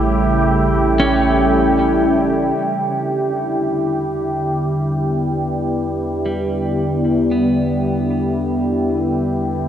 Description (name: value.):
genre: ambient.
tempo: 57 BPM.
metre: 4/4.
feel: straight.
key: E dorian.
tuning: A4 = 440 Hz.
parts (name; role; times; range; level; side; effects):
evolving wavetable pad; sustained chords; 0.0-9.7 s; C#3 to G4; -16 LUFS; equal; phaser, built-in reverb.
clean electric guitar; arpeggios; 0.0-9.7 s; G3 to C#5; -24 LUFS; right 1 dB; analog delay.
warm sub bass; bass; 0.0-9.7 s; A1 to E2; -26 LUFS; equal; none.
bowed-like drone; drone; 0.0-2.7 s; E3 to E4; -28 LUFS; left 2 dB; built-in reverb.
room: wet lush hall reverb, RT60 2.8 s.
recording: dreamy mix soaked in reverb.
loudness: -15 LUFS.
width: side -9 dB against mid.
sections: 0.0-2.6 A section; 2.6-9.7 B section.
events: filter sweep on ambient pad 0.0-2.6; fade-in on clean electric guitar 2.6-9.7; fade-in on sub bass 2.6-9.7.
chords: 0.0 A7; 2.6 Em7.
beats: 0.47 1.53 | 2.58 3.63 4.68 5.74 | 6.79 7.84 8.89.